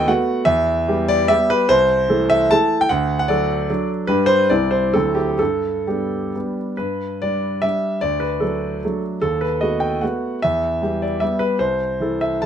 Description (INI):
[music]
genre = classical, romantic triple-time dance for piano with dotted rhythms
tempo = 122-160 BPM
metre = 3/4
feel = rubato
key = G major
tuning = A4 = 439 Hz
[part]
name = warm concert grand piano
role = solo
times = 0.0-12.5 s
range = C2 to A5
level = -17 LUFS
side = equal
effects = none
[sound]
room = light reverb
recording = none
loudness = -17 LUFS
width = side -9 dB against mid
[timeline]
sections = 0.0-6.8 A section; 6.8-12.5 B section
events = none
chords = 0.5 Em; 1.7 Am/C; 2.9 D; 4.1 G; 4.5 C; 4.9 D9; 5.4 G; 8.0 D; 9.2 B7/D#; 10.4 Em; 11.6 Am/C